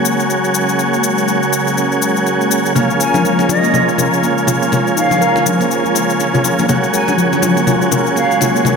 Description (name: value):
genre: afro house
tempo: 122 BPM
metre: 4/4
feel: swing 59% on 16ths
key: unclear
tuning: A4 = 441 Hz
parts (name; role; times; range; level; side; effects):
- warm analog pad; sustained chords; 0.0-8.8 s; Db3 to C5; -19 LUFS; left 1 dB; chorus, vintage 12-bit sampler grit
- tonewheel organ; stabs; 0.0-8.8 s; Bb3 to Ab4; -16 LUFS; right 2 dB; chorus vibrato, ping-pong delay
- shaker; drums; 0.1-8.8 s; none; -23 LUFS; left 9 dB; none
- handpan; arpeggios; 2.8-8.6 s; F3 to Bb4; -19 LUFS; right 1 dB; ping-pong delay
- congas; percussion; 2.8-8.8 s; none; -19 LUFS; left 4 dB; none
- reedy concert flute; melody; 3.0-8.4 s; Eb5 to Ab5; -20 LUFS; right 1 dB; ping-pong delay
room: wet lush hall reverb, RT60 2.1 s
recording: bright 1980s-style digital production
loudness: -12 LUFS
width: side -5 dB against mid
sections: 0.0-8.8 A section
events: filter sweep on analog synth pad 0.0-8.8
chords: 0.0 Gbadd9; 2.8 Bbm7; 6.7 Gbadd9